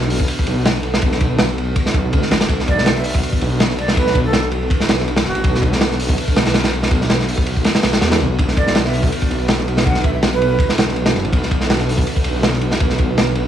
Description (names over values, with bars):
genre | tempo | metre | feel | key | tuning
drum and bass, jungle | 163 BPM | 4/4 | swing 54% on 16ths | B minor | A4 = 443 Hz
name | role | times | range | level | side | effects
ethereal airy pad | sustained chords | 0.0-13.5 s | B3 to B4 | -24 LUFS | right 2 dB | ensemble chorus, built-in reverb
detuned saw bass | bass | 0.0-13.5 s | F#1 to E2 | -19 LUFS | equal | none
crunchy breakbeat drum kit | drums | 0.0-13.4 s | hi-hat, kick drum, ride cymbal, snare drum | -17 LUFS | equal | none
breathy jazz flute | melody | 2.7-5.6, 8.6-10.7 s | F#4 to F#5 | -24 LUFS | right 3 dB | dub echo
room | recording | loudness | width
small room ambience | vinyl crackle | -14 LUFS | side -10 dB against mid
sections
0.0-13.5 A section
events
none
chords
0.0 Bm7